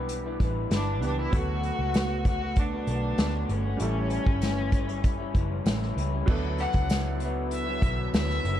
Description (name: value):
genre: indie pop, bedroom pop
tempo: 97 BPM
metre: 4/4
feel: straight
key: D major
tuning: A4 = 440 Hz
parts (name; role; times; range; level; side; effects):
- bright upright piano; accompaniment; 0.0-8.6 s; E3 to A4; -37 LUFS; right 5 dB; none
- electric guitar through a small old amp; accompaniment; 0.0-8.6 s; A2 to B4; -33 LUFS; left 2 dB; wide subtle chorus, vibrato effect
- vintage muted picked electric bass; bass; 0.0-8.6 s; F#1 to D2; -30 LUFS; equal; none
- unplugged drum kit; drums; 0.1-8.6 s; crash cymbal, hi-hat, kick drum, snare drum; -27 LUFS; equal; vintage 12-bit sampler grit
- warm violin; melody; 0.7-8.6 s; C#4 to F#5; -33 LUFS; left 2 dB; lush chorus, analog delay
- tambourine; percussion; 0.7-8.3 s; none; -48 LUFS; right 18 dB; none
room: light reverb, small room ambience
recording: dark, warm production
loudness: -24 LUFS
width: side -11 dB against mid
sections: 0.0-6.3 A section; 6.3-8.6 B section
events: none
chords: 0.0 G6; 1.3 D6; 3.8 A7; 6.3 D69